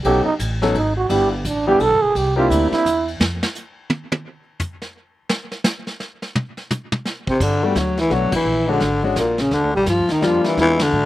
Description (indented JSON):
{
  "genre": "jazz, small-group swing and bop",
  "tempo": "171 BPM",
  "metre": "3/4",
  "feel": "swing 63% on 8ths",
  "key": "unclear",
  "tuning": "A4 = 439 Hz",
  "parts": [
    { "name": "growling trombone", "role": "second line", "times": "0.0-3.1, 7.3-11.1 s", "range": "Bb3 to A4", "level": "-20 LUFS", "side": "right 3 dB", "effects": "slapback echo" },
    { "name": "upright bass", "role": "bass", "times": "0.0-3.4, 7.3-11.1 s", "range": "E1 to G#2", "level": "-24 LUFS", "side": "equal", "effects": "none" },
    { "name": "vintage brush drum kit", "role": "drums", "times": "0.0-11.1 s", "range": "brushed snare drum, crash cymbal, hi-hat, kick drum, ride cymbal, snare drum, toms", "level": "-24 LUFS", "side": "equal", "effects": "none" },
    { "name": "warm grand piano", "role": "accompaniment", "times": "0.1-2.8, 7.6-10.8 s", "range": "F#3 to A4", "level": "-21 LUFS", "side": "left 3 dB", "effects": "slapback echo" },
    { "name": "growling baritone saxophone", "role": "melody", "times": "7.3-11.1 s", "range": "Bb2 to G3", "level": "-18 LUFS", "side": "left 2 dB", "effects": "none" }
  ],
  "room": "little or no reverb",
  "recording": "recorded outdoors, with no room sound",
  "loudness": "-17 LUFS",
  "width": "side -15 dB against mid",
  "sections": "0.0-7.4 A section; 7.4-11.1 B section",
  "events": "trombone solo 0.0-7.4; drum solo 3.2-7.4; band accent 8.3, 10.7",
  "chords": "0.0 B7; 1.1 Em7; 2.1 C7; 3.2 N.C.; 6.4 F5; 7.4 Gmaj9; 8.5 Bb7alt; 9.5 Ebmaj7"
}